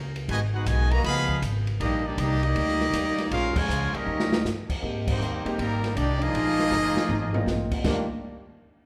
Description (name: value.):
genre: jazz, big band swing.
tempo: 159 BPM.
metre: 4/4.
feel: swing 65% on 8ths.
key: Eb major.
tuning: A4 = 440 Hz.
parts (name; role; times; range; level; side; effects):
upright bass; bass; 0.0-8.1 s; G1 to Ab2; -30 LUFS; equal; none.
open jazz drum kit; drums; 0.2-8.0 s; crash cymbal, hi-hat, kick drum, ride cymbal, snare drum, toms; -33 LUFS; equal; none.
brilliant trumpet section; melody; 0.3-7.5 s; G3 to Cb6; -31 LUFS; equal; none.
bright trombone section; second line; 0.3-8.1 s; Cb3 to G4; -32 LUFS; equal; none.
warm grand piano; accompaniment; 4.8-8.1 s; G3 to G4; -35 LUFS; equal; none.
room: moderate recital hall reverb, RT60 1.5 s.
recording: recorded in a church or concert hall.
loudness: -25 LUFS.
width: mono.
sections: 0.0-4.8 A section; 4.8-7.8 B section; 7.8-8.9 C section.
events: band accent 3.5, 5.0; drum fill 4.1-4.4, 6.7-7.5.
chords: 0.3 Abm7; 1.0 Db9; 1.8 Ebmaj7; 3.3 Bbm7; 4.1 Eb7; 4.8 Abmaj9; 6.3 Bb7sus4; 7.8 Ebmaj7.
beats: | 0.28 0.66 1.04 1.42 | 1.79 2.17 2.55 2.93 | 3.31 3.69 4.06 4.44 | 4.82 5.20 5.58 5.95 | 6.33 6.71 7.09 7.46 | 7.84.